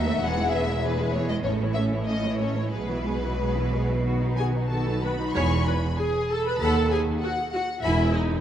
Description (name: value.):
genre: quick classical-period movement for string orchestra.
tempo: 95 BPM.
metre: 4/4.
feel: uneven beats, rubato.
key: E major.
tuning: A4 = 440 Hz.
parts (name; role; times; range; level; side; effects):
warm symphonic violin section; melody; 0.0-8.2 s; B4 to C#6; -31 LUFS; left 4 dB; none.
rich studio violin section; second line; 0.0-8.1 s; B3 to B5; -33 LUFS; left 2 dB; none.
rich studio viola section; accompaniment; 0.0-8.4 s; D#3 to C#5; -28 LUFS; right 1 dB; none.
rich symphonic cello section; bass; 0.0-8.3 s; D#2 to B2; -30 LUFS; right 2 dB; none.
rich symphonic double bass section; bass; 0.0-8.3 s; E1 to D#2; -28 LUFS; right 1 dB; none.
room: wet scoring stage reverb, RT60 1.9 s.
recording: dark, warm production.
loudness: -22 LUFS.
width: side -10 dB against mid.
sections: 0.0-5.3 A section; 5.3-8.4 B section.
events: none.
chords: 0.2 E; 1.4 A; 2.7 E/B; 4.0 B; 5.3 E; 6.6 B/D#; 7.8 E.